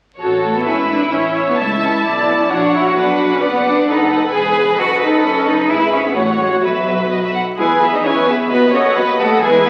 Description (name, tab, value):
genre	quick classical-period movement for string orchestra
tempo	131 BPM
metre	2/4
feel	straight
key	A major, E major from 3.9 s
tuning	A4 = 441 Hz
part	warm chamber violin section	melody	0.2-9.7 s	C#5 to A5	-24 LUFS	equal	none
part	clear chamber violin section	second line	0.2-9.7 s	G#4 to E5	-21 LUFS	equal	none
part	rich studio viola section	accompaniment	0.2-9.7 s	E4 to D#5	-20 LUFS	equal	none
part	warm symphonic double bass section	bass	0.2-9.7 s	E1 to E2	-29 LUFS	equal	none
part	rich chamber cello section	bass	0.4-9.7 s	F#3 to G#4	-20 LUFS	equal	none
room	wet recital hall reverb, RT60 1.6 s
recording	very old 78 rpm record, vinyl crackle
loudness	-15 LUFS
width	mono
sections	0.2-7.6 A section; 7.6-9.7 B section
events	none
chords	0.2 A; 0.7 E/G#; 1.1 A; 2.0 Bm; 2.5 F#/A#; 3.0 Bm; 3.9 B7/F#; 4.3 E; 4.8 B7/F#; 5.7 E/G#; 6.2 F#m/A; 6.6 Bsus4; 7.6 E; 8.5 B7/D#